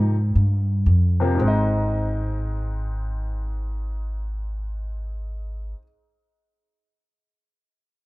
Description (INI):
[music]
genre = modal jazz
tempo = free time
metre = none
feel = none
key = Ab major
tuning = A4 = 444 Hz
[part]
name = clear concert grand piano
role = accompaniment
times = 0.0-5.8 s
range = Ab2 to Eb5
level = -27 LUFS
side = left 1 dB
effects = none
[part]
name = upright bass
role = bass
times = 0.0-5.7 s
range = Ab1 to Ab2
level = -22 LUFS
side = equal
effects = none
[sound]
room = studio reverb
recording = rough home demo mix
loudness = -21 LUFS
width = side -20 dB against mid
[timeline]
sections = 0.0-1.4 A section; 1.4-5.9 B section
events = slowing down 0.0-1.4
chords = 0.0 Bb7sus2; 1.4 Ab